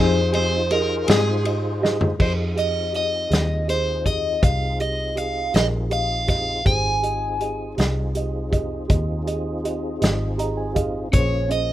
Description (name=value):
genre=slow blues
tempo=54 BPM (dotted quarters)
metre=12/8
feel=straight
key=F minor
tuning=A4 = 439 Hz
part: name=crunchy overdriven guitar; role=melody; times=0.0-11.7 s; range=Ab4 to Ab5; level=-23 LUFS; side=equal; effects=phaser
part: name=dark upright piano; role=accompaniment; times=0.0-11.7 s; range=Db4 to Bb5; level=-28 LUFS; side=right 4 dB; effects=none
part: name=semi-hollow electric guitar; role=accompaniment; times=0.0-1.3 s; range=F3 to Ab4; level=-25 LUFS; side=left 6 dB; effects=tremolo
part: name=mellow tonewheel organ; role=sustained chords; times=0.0-11.7 s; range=Bb3 to C5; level=-31 LUFS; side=left 1 dB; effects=slow rotary speaker, chorus vibrato
part: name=vintage muted fingered electric bass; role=bass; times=0.0-11.7 s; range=Ab1 to Ab2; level=-25 LUFS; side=equal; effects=none
part: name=vintage drum kit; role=drums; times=0.3-11.7 s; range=crash cymbal, hi-hat, kick drum, ride cymbal, snare drum, toms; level=-22 LUFS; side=equal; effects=none
room=studio ambience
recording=rough home demo mix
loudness=-19 LUFS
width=side -13 dB against mid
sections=0.0-2.2 A section; 2.2-11.7 B section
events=overdriven electric guitar solo 0.0-2.2; drum fill 1.8-2.2; upright piano fill 10.0-11.1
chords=0.0 Fm7; 11.1 Bbm7